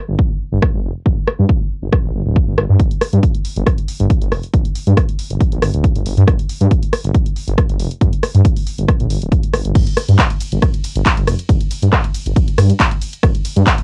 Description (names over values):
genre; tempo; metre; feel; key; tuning
driving peak-time techno; 138 BPM; 4/4; straight; G minor; A4 = 440 Hz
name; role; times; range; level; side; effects
detuned saw bass; bass; 0.1-13.6 s; D1 to G2; -14 LUFS; equal; sidechain pumping
electronic kick drum; drums; 0.2-13.8 s; none; -14 LUFS; equal; overdrive, cassette tape
punchy analog drum machine; drums; 0.6-13.8 s; crash cymbal, handclaps, hi-hat, ride cymbal, rim click, shaker; -19 LUFS; equal; cassette tape, sidechain pumping on hats, sidechain pumping on cymbals, sidechain pumping on perc
room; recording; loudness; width
little or no reverb; home recording on cassette; -12 LUFS; side -33 dB against mid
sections
0.0-9.8 A section; 9.8-13.8 B section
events
drop 9.8-13.8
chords
none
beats
0.19 0.62 | 1.06 1.49 1.93 2.36 | 2.80 3.23 3.67 4.10 | 4.54 4.97 5.41 5.84 | 6.28 6.71 7.14 7.58 | 8.01 8.45 8.88 9.32 | 9.75 10.19 10.62 11.06 | 11.49 11.93 12.36 12.80 | 13.23 13.67